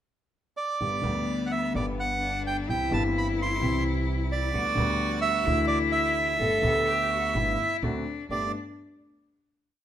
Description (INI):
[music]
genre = tango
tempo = 128 BPM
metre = 4/4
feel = rubato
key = G major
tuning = A4 = 440 Hz
[part]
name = bandoneon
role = melody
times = 0.6-8.5 s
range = D5 to C6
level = -27 LUFS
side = right 3 dB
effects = none
[part]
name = clear cello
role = second line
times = 0.8-8.5 s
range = B3 to A4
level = -31 LUFS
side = left 5 dB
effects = none
[part]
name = warm concert grand piano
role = accompaniment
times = 0.8-8.5 s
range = G1 to B4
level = -30 LUFS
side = equal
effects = none
[part]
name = upright bass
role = bass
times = 0.8-8.5 s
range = G1 to D2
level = -33 LUFS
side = equal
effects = none
[sound]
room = moderate large studio reverb, RT60 1.1 s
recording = minimal, uncompressed stereo recording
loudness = -24 LUFS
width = side -10 dB against mid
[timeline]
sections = 0.0-0.8 pickup bar; 0.8-8.3 A section; 8.3-9.8 final chord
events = none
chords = 0.0 N.C.; 0.8 G; 2.7 C; 4.5 G/D; 5.5 Dadd9; 6.4 Gadd9; 7.8 D7; 8.3 Gadd9